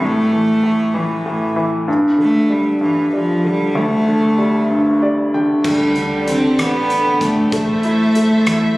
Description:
six-eight pop ballad; 64 BPM (dotted quarters); 6/8; straight; A4 = 440 Hz
rich cello; melody; 0.0-8.8 s; E3 to C4; -17 LUFS; equal; tape echo
clear concert grand piano; accompaniment; 0.0-8.8 s; D2 to G5; -17 LUFS; equal
warm studio string section; sustained chords; 5.6-8.8 s; D3 to E5; -23 LUFS; equal
woody fretless electric bass; bass; 5.6-8.8 s; A1 to E2; -28 LUFS; equal
natural country drum kit; drums; 5.6-8.6 s; crash cymbal, hi-hat, kick drum, rim click; -26 LUFS; equal
studio reverb; recorded on a phone in the room, club reverb, compression; -14 LUFS; side -20 dB against mid
0.0-5.6 A section; 5.6-8.8 B section
grand piano fill 4.7-5.6, 8.5-8.8
0.0 A5; 1.9 Gsus2; 5.6 Dsus4; 7.5 Am

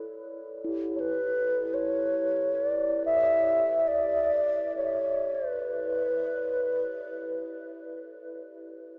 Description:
world meditative, free-time meditation music; free time; E dorian; A4 = 441 Hz
quartz singing bowl; texture; 0.0-8.8 s; E4 to D5; -39 LUFS; equal
mellow hollow alto flute; melody; 0.9-7.9 s; B4 to E5; -29 LUFS; equal; diffuse ambient delay
wet huge ambient reverb, RT60 7.9 s; in a vast, echoing space, small speaker sound; -28 LUFS; mono
0.1-9.0 A section

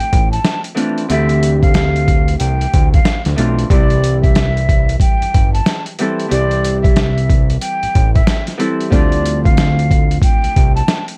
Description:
hip hop, boom-bap hip-hop; 92 BPM; 4/4; swing 62% on 16ths; C major; A4 = 440 Hz
breathy jazz flute; melody; 0.0-11.0 s; D5 to A5; -24 LUFS; equal; high-pass filter, low-pass filter, plate reverb, digital delay
Celtic harp; accompaniment; 0.0-11.2 s; E3 to A4; -23 LUFS; equal; cassette tape, high-pass filter, low-pass filter
fat analog bass; bass; 0.0-10.8 s; G1 to D2; -18 LUFS; equal
boom bap sampler-style drum kit; drums; 0.0-11.2 s; hi-hat, kick drum, snare drum; -16 LUFS; equal
light reverb; vinyl crackle; -14 LUFS; mono
0.0-11.2 A section
0.0 Dm7; 3.7 C; 8.9 Dm7

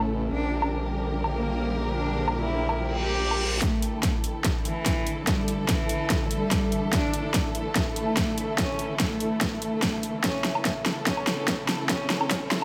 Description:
heavy wobble dubstep; 145 BPM; 4/4; half-time; A4 = 441 Hz
warm cello; melody; 0.0-12.2 s; E3 to G4; -33 LUFS; equal; dub echo
dark studio string section; sustained chords; 0.0-12.6 s; C#3 to Bb4; -35 LUFS; equal; sidechain pumping
formant-sweep wobble bass; bass; 0.0-3.6 s; A1 to Bb1; -32 LUFS; equal; chorus, overdrive
dubstep drum kit; drums; 0.0-12.6 s; hi-hat, snare drum, woodblock; -29 LUFS; equal; low-pass filter on perc, small room ambience, low-pass filter on snare, low-pass filter on hats
granular cloud pad; texture; 0.0-12.6 s; C#4 to Bb5; -39 LUFS; equal; built-in reverb, sidechain pumping
reverse cymbal and riser; sound effects; 2.9-12.6 s; -39 LUFS; equal
electronic kick drum; drums; 3.6-12.4 s; -32 LUFS; equal; distortion, small room ambience
light reverb; high-pass filter; -26 LUFS; mono
0.0-3.6 A section; 3.6-12.6 B section
reverse cymbal 2.9-3.6; build-up 3.6-12.6; drum fill 3.6-12.6
0.3 Gm/Bb; 3.6 Dsus2; 10.2 A

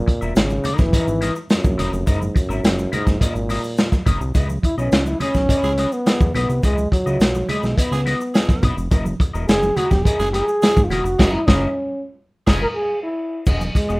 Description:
funk; 105 BPM; 4/4; straight; C# dorian; A4 = 440 Hz
breathy trombone; melody; 0.0-14.0 s; F#2 to A#4; -22 LUFS; equal; slapback echo
fat analog bass; bass; 0.0-14.0 s; E1 to E2; -23 LUFS; equal
electric guitar at the edge of break-up; accompaniment; 0.1-14.0 s; E4 to E5; -28 LUFS; left 3 dB; wah
crunchy breakbeat drum kit; drums; 0.1-13.9 s; crash cymbal, hi-hat, kick drum, snare drum; -18 LUFS; equal
congas; percussion; 0.1-13.9 s; -30 LUFS; right 2 dB
tube shaker; percussion; 0.2-14.0 s; -44 LUFS; left 3 dB
growling tenor saxophone; second line; 5.2-12.6 s; G#4; -28 LUFS; right 3 dB
light reverb; rough home demo mix; -16 LUFS; side -24 dB against mid
0.0-4.4 A section; 4.4-13.5 B section
trombone solo 4.4-13.5; band accent 11.2-13.5
0.0 F#13; 4.4 C#m9; 8.9 F#13; 13.5 Emaj9

